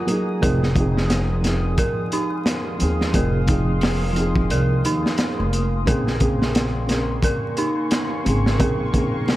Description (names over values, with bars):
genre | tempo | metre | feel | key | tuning
trip hop | 88 BPM | 4/4 | swing 58% on 16ths | Bb minor | A4 = 440 Hz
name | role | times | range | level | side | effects
felt-muted upright piano | accompaniment | 0.0-9.4 s | Db3 to Ab4 | -25 LUFS | equal | harmonic tremolo, vintage 12-bit sampler grit, tape echo
deep dark ambient pad | sustained chords | 0.0-9.4 s | Ab4 to Eb6 | -31 LUFS | left 1 dB | chorus, built-in reverb
dark detuned synth bell | arpeggios | 0.0-9.4 s | Eb4 to Bb4 | -28 LUFS | right 2 dB | chorus, tape echo
crunchy breakbeat drum kit | drums | 0.1-9.4 s | hi-hat, kick drum, snare drum | -23 LUFS | equal | none
upright bass | bass | 0.4-9.4 s | F1 to Eb2 | -22 LUFS | equal | none
bowed-like drone | texture | 2.7-9.4 s | Bb3 | -36 LUFS | equal | none
room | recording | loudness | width
studio ambience | vinyl crackle | -18 LUFS | side -15 dB against mid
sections
0.0-9.4 A section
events
break 0.0-0.4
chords
0.4 Fm7; 5.9 Bbm9